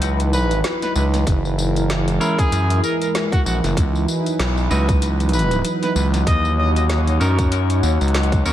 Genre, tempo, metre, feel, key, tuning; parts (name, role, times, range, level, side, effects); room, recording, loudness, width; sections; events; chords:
glitch hop; 96 BPM; 4/4; swing 58% on 16ths; C# dorian; A4 = 440 Hz
warm analog pad; sustained chords; 0.0-8.5 s; F#3 to C#5; -24 LUFS; right 1 dB; chorus, sidechain pumping
gritty driven synth bass; bass; 0.0-8.5 s; F#1 to F#2; -18 LUFS; equal
drum and bass drum kit; drums; 0.0-8.5 s; hi-hat, snare drum, tambourine; -27 LUFS; left 1 dB
impact; sound effects; 0.8-1.3 s; barely audible
deep dark ambient pad; texture; 0.2-8.5 s; E3 to G#5; -27 LUFS; right 1 dB; chorus, built-in reverb, sidechain pumping
clear trumpet; melody; 0.3-6.8 s; F#4 to D#5; -25 LUFS; left 1 dB; ping-pong delay
electronic kick drum; drums; 1.3-8.4 s; -19 LUFS; equal
semi-hollow electric guitar; stabs; 2.2-8.5 s; C#4 to B4; -26 LUFS; left 1 dB; vintage 12-bit sampler grit, sidechain pumping, ping-pong delay
light reverb; vinyl crackle; -16 LUFS; side -12 dB against mid
0.0-8.5 A section
impact 0.0-1.3
0.0 C#m11; 1.3 F#9; 3.8 C#m11; 6.3 D#m7